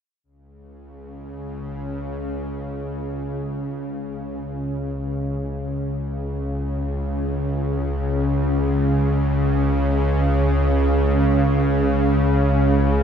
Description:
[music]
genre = ambient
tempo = free time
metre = none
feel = none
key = unclear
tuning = A4 = 441 Hz
[part]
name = bowed-like drone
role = drone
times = 0.8-13.0 s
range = C#2 to C#3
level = -20 LUFS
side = equal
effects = built-in reverb
[sound]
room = wet cathedral reverb, RT60 5.1 s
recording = none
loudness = -20 LUFS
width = side -8 dB against mid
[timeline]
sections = 0.2-13.0 A section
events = fade-in on synth drone 0.2-13.0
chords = none

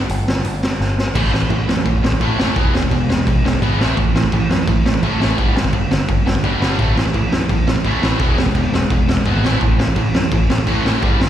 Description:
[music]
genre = punk rock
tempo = 170 BPM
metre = 4/4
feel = straight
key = unclear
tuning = A4 = 441 Hz
[part]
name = growling picked electric bass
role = bass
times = 0.0-11.3 s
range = E1 to F#2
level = -20 LUFS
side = equal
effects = overdrive
[part]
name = raw garage drum kit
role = drums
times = 0.1-11.3 s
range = crash cymbal, hi-hat, kick drum, snare drum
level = -18 LUFS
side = equal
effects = none
[part]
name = distorted electric guitar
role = riff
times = 1.1-11.3 s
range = E2 to A3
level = -22 LUFS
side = right 11 dB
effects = distortion, slapback echo
[part]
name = distorted electric guitar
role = riff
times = 1.2-11.3 s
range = G2 to B3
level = -23 LUFS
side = left 11 dB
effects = overdrive, slapback echo
[sound]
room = little or no reverb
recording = live gig heard through the venue's PA, recital hall reverb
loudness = -14 LUFS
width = side -11 dB against mid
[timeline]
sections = 0.0-1.2 A section; 1.2-11.3 B section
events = drum fill 0.8-1.2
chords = 0.0 N.C.; 1.2 A5; 2.6 E; 3.8 A5; 5.4 G5; 6.8 A5; 8.2 E; 9.4 A5

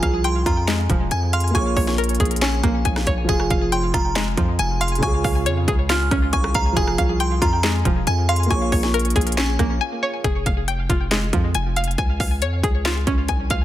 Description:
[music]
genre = hip hop, trap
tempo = 138 BPM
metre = 4/4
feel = half-time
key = F minor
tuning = A4 = 440 Hz
[part]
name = delicate synth tine bell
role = second line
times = 0.0-9.8 s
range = Ab5 to F6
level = -27 LUFS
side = right 3 dB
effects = chorus, tremolo, tape echo
[part]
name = dark grand piano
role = accompaniment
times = 0.0-10.3 s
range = Db3 to Db5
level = -26 LUFS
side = right 2 dB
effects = low-pass filter
[part]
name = string-like resonator pluck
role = arpeggios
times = 0.0-13.6 s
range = F3 to Ab5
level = -24 LUFS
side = left 1 dB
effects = chorus, low-pass filter, tape echo
[part]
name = distorted 808-style bass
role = bass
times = 0.0-13.6 s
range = E1 to F2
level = -22 LUFS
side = equal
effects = distortion
[part]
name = trap drum kit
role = drums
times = 0.0-13.6 s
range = handclaps, hi-hat, kick drum, rim click, snare drum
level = -22 LUFS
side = equal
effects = none
[sound]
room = light reverb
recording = dense, heavily limited modern master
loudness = -18 LUFS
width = side -13 dB against mid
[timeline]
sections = 0.0-10.2 A section; 10.2-13.6 B section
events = break 9.8-10.2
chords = 0.0 Fmadd9; 1.5 Bbm7; 3.3 Fmadd9; 5.0 Db; 6.8 Fmadd9; 8.5 Bbm7; 10.2 Fmadd9; 12.0 Db

